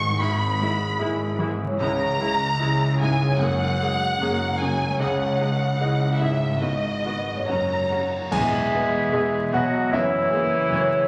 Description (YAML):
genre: cinematic, emotional film score for orchestra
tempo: 75 BPM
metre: 4/4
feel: rubato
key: unclear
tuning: A4 = 438 Hz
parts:
  - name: warm studio violin section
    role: melody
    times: 0.0-10.8 s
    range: G#4 to C#6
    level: -33 LUFS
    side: equal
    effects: none
  - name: warm studio violin section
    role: second line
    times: 0.0-10.8 s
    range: A#3 to C#6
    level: -32 LUFS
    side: equal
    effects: none
  - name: clear concert grand piano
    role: accompaniment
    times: 0.0-11.1 s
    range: C#2 to G#5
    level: -28 LUFS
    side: equal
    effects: none
  - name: concert harp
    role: arpeggios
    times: 0.0-11.1 s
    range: E2 to E6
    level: -30 LUFS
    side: equal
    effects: none
  - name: rich studio cello section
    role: bass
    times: 0.0-10.8 s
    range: E2 to C#3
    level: -34 LUFS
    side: equal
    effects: none
  - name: rich studio double bass section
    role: bass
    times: 0.0-10.8 s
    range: E1 to C#2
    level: -34 LUFS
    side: equal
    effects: none
  - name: rich studio viola section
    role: accompaniment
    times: 0.2-10.8 s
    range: G#3 to G#4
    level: -36 LUFS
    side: equal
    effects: none
  - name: cymbal swell, clash cymbals and concert bass drum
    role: percussion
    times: 5.0-9.9 s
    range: none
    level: -38 LUFS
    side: equal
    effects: none
  - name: clear oboe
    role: second line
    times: 8.3-11.1 s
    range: E4 to G#4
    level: -30 LUFS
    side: equal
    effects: none
  - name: hollow concert flute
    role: second line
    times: 8.3-11.1 s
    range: C#5 to E5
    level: -30 LUFS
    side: equal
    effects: none
  - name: mellow French horn section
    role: sustained chords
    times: 8.3-11.1 s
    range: E3 to G#3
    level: -29 LUFS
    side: equal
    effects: none
room: wet scoring stage reverb, RT60 1.7 s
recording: vinyl crackle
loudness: -23 LUFS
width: mono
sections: 0.0-8.3 A section; 8.3-11.1 B section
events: band accent 8.3-9.1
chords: 0.2 E/G#; 1.8 C#m; 3.4 F#add9; 5.0 C#madd9; 6.6 G#m7; 7.5 F#; 8.3 E; 9.9 F#add9